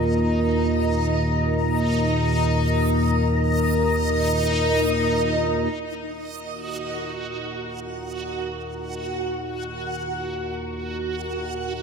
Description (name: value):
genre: dark ambient drone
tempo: free time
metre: none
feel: none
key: Eb minor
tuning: A4 = 440 Hz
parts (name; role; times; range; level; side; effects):
- deep dark ambient pad; sustained chords; 0.0-11.8 s; Eb4 to Bb5; -26 LUFS; equal; chorus, built-in reverb
- dark baby grand piano; arpeggios; 0.0-5.8 s; none; barely audible; none; none
- analog drone; drone; 0.0-11.8 s; Eb2 to Bb2; -24 LUFS; equal; chorus
- backwards swelling texture; texture; 0.0-11.8 s; Eb4 to Gb6; -28 LUFS; equal; built-in reverb
room: wet spring reverb, RT60 2.3 s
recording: echo-heavy mix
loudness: -21 LUFS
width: side -6 dB against mid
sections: 0.0-5.7 A section; 5.7-11.8 B section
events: none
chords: 0.0 Ebsus2; 5.7 Ebm